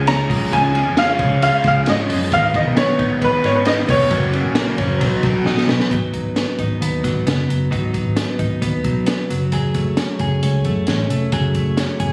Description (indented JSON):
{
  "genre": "jangly indie pop",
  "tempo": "133 BPM",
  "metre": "4/4",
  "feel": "straight",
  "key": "unclear",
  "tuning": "A4 = 440 Hz",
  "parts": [
    { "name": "bright upright piano", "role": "melody", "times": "0.0-4.3 s", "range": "Cb5 to Bb5", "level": "-21 LUFS", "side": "equal", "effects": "tape echo" },
    { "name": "raw garage guitar", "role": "accompaniment", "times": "0.0-5.9 s", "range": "Gb2 to Eb4", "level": "-25 LUFS", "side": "equal", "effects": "overdrive, phaser" },
    { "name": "direct-recorded clean electric guitar", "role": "arpeggios", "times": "0.0-12.1 s", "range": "Eb3 to Ab4", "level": "-25 LUFS", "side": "equal", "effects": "tape echo" },
    { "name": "vintage muted picked electric bass", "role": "bass", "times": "0.0-12.1 s", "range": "F1 to Ab2", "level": "-23 LUFS", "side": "equal", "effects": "none" },
    { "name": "compact cocktail drum kit", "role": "drums", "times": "0.1-12.1 s", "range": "hi-hat, kick drum, ride cymbal, snare drum", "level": "-25 LUFS", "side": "equal", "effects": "none" }
  ],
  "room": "light reverb",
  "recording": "recorded on a phone in the room, studio reverb, vinyl crackle, compression",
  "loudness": "-18 LUFS",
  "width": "mono",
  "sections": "0.0-5.9 A section; 5.9-12.1 B section",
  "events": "drum fill 5.5-5.9",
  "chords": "0.0 Db; 2.3 Abm; 4.1 Gb; 5.0 Cb; 5.9 Abm7; 9.3 Gbmadd9",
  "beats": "0.07 | 0.52 0.97 1.42 1.87 | 2.32 2.77 3.21 3.66 | 4.11 4.56 5.01 5.46 | 5.91 6.36 6.81 7.26 | 7.71 8.17 8.62 9.07 | 9.52 9.97 10.42 10.88 | 11.33 11.78"
}